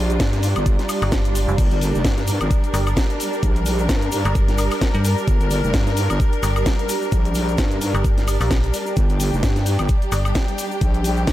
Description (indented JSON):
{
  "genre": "bass house",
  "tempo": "130 BPM",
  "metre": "4/4",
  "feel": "swing 57% on 16ths",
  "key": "G minor",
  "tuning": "A4 = 441 Hz",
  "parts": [
    { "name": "rich studio string section", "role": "sustained chords", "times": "0.0-11.3 s", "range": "G3 to Bb4", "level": "-26 LUFS", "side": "left 1 dB", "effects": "sidechain pumping" },
    { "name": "wobble bass", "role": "bass", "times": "0.0-11.3 s", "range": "F1 to G2", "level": "-21 LUFS", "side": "equal", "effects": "chorus, overdrive, sidechain pumping" },
    { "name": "ethereal airy pad", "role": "texture", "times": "0.0-11.3 s", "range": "G4 to Bb5", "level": "-28 LUFS", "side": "right 2 dB", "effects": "ensemble chorus, built-in reverb, sidechain pumping" },
    { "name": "house drum kit", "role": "drums", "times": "0.1-11.3 s", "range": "crash cymbal, hi-hat, snare drum, woodblock", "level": "-27 LUFS", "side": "left 1 dB", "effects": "none" },
    { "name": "tube shaker", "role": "percussion", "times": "0.1-11.3 s", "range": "none", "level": "-35 LUFS", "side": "left 4 dB", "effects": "none" },
    { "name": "electronic kick drum", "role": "drums", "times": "0.2-11.3 s", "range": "none", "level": "-19 LUFS", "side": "equal", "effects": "none" },
    { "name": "metallic FM bass", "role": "bass", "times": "1.0-10.3 s", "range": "F1 to G2", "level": "-20 LUFS", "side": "equal", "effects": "tube saturation, sidechain pumping" }
  ],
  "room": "light reverb",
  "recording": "faint mains hum",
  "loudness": "-17 LUFS",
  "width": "side -14 dB against mid",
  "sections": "0.0-11.3 A section",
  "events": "none",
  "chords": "0.0 Gm"
}